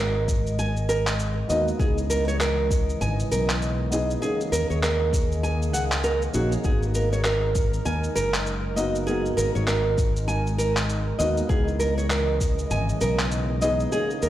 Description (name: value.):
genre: organic downtempo.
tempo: 99 BPM.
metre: 4/4.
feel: swing 60% on 16ths.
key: G# minor.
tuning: A4 = 441 Hz.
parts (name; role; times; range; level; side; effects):
felt-muted upright piano; accompaniment; 0.0-14.3 s; A#3 to G#4; -32 LUFS; equal; sidechain pumping, low-pass filter, digital delay.
warbly tape-like pad; sustained chords; 0.0-14.3 s; C#3 to D#5; -32 LUFS; equal; chorus, built-in reverb, vintage 12-bit sampler grit, sidechain pumping.
nylon-string guitar; arpeggios; 0.0-14.3 s; F#4 to G#5; -26 LUFS; right 2 dB; digital delay.
fretless electric bass; bass; 0.0-14.3 s; F#1 to D#2; -26 LUFS; equal; ensemble chorus, sidechain pumping.
electronic cabasa and handclaps; drums; 0.3-14.3 s; none; -31 LUFS; equal; none.
electronic kick drum; drums; 0.3-12.5 s; none; -24 LUFS; left 1 dB; none.
room: light reverb.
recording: played on a big sound system in a bare room, large studio reverb.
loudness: -21 LUFS.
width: side -13 dB against mid.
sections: 0.0-14.3 A section.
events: filter sweep on felt piano 0.0-14.3.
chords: 0.0 G#m7; 1.8 C#m7; 4.2 D#7sus4; 6.6 G#m7; 11.5 C#m7.